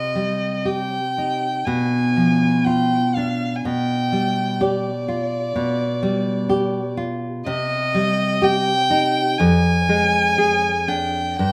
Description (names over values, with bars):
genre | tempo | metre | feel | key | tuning
romantic duo for violin and classical guitar | 62 BPM | 4/4 | rubato | C minor | A4 = 435 Hz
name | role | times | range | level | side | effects
warm violin | melody | 0.0-11.5 s | D5 to G#5 | -24 LUFS | equal | none
nylon-string guitar | accompaniment | 0.0-11.5 s | F2 to Ab4 | -22 LUFS | equal | none
room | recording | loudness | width
moderate recital hall reverb, RT60 1.3 s | none | -20 LUFS | mono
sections
0.0-11.5 A section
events
none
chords
0.0 Cm; 1.7 Bdim7; 3.6 G7/B; 7.5 Cm; 9.4 Ddim/F